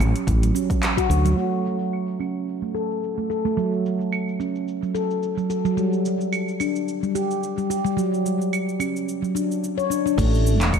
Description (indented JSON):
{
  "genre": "organic downtempo",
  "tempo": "109 BPM",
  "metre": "4/4",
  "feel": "swing 55% on 16ths",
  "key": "unclear",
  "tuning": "A4 = 439 Hz",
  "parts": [
    { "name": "handpan", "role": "arpeggios", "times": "0.0-10.3 s", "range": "F#3 to C#5", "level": "-22 LUFS", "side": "equal", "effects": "low-pass filter, diffuse ambient delay" },
    { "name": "woody fretless electric bass", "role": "bass", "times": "0.0-1.3, 10.2-10.8 s", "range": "E1 to D2", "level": "-19 LUFS", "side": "equal", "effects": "sidechain pumping" },
    { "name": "deep house drum kit", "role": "drums", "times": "0.0-10.8 s", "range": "cabasa, claves, crash cymbal, handclaps, hi-hat", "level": "-30 LUFS", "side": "right 2 dB", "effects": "overdrive, low-pass filter on hats, small room ambience, low-pass filter on perc, low-pass filter on snare, low-pass filter on cymbals" },
    { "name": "electronic kick drum", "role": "drums", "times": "0.3-1.1, 10.2-10.8 s", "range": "none", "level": "-24 LUFS", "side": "equal", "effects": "overdrive, small room ambience" }
  ],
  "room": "moderate plate reverb, RT60 2.1 s",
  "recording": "dreamy mix soaked in reverb",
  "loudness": "-21 LUFS",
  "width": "side -7 dB against mid",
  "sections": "0.0-1.4 A section; 1.4-10.2 B section",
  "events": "filter sweep on drum 1.4-10.2; filter sweep on handpan 1.4-10.2",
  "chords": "0.0 Dmaj7; 1.4 N.C.; 3.6 F#m; 5.8 G5; 8.0 Dmaj7; 10.2 A5"
}